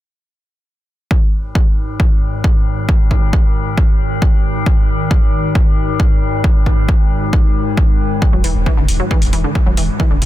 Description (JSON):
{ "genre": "driving peak-time techno", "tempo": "135 BPM", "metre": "4/4", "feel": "straight", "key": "unclear", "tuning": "A4 = 440 Hz", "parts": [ { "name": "metallic inharmonic drone", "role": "drone", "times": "1.5-10.3 s", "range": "G#2 to D#3", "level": "-20 LUFS", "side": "left 2 dB", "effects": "chorus, built-in reverb, sidechain pumping" }, { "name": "electronic kick drum", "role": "drums", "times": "1.1-10.3 s", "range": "none", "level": "-13 LUFS", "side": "equal", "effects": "none" }, { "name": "wide unison pluck", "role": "riff", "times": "8.3-10.2 s", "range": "D3 to F#3", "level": "-21 LUFS", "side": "right 1 dB", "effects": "sidechain pumping, ping-pong delay" }, { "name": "saturated sub bass", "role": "bass", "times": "8.3-10.3 s", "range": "E1", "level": "-18 LUFS", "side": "equal", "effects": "tube saturation, sidechain pumping, low-pass filter" }, { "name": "electronic hi-hat", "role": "drums", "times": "8.4-10.3 s", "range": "none", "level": "-23 LUFS", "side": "left 1 dB", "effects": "none" } ], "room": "little or no reverb", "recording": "dense, heavily limited modern master", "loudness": "-12 LUFS", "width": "side -14 dB against mid", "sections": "1.1-10.3 A section", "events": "none", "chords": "1.1 G#5; 8.2 Emaj9" }